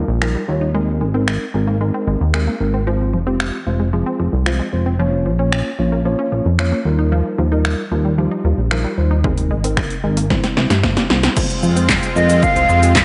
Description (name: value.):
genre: dance-pop.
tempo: 113 BPM.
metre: 4/4.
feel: straight.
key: F minor.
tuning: A4 = 438 Hz.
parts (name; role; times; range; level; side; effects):
mellow tine electric piano; accompaniment; 0.0-13.0 s; G3 to Db5; -24 LUFS; equal; sidechain pumping.
unison pluck; arpeggios; 0.0-13.0 s; E3 to Eb4; -28 LUFS; equal; sidechain pumping, tape echo.
chorused synth bass; bass; 0.0-13.0 s; F1 to G2; -20 LUFS; equal; sidechain pumping.
punchy analog drum machine; drums; 0.2-13.0 s; crash cymbal, finger snaps, handclaps, hi-hat, kick drum, shaker, snare drum; -22 LUFS; equal; overdrive.
supersaw pad; sustained chords; 11.4-13.0 s; Ab3 to F4; -25 LUFS; equal; sidechain pumping.
breathy tenor recorder; melody; 12.2-13.0 s; Eb5 to F5; -17 LUFS; equal; none.
room: moderate echo chamber reverb, RT60 1.4 s.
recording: nothing above 10.7 kHz.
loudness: -17 LUFS.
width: mono.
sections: 0.0-11.4 A section; 11.4-13.0 B section.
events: drum fill 10.3-11.4.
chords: 0.0 Ebadd9; 0.7 Abadd9; 2.9 Fm; 5.0 Bbm; 6.9 Ebadd9; 9.2 Abadd9; 10.3 C; 11.4 Fm.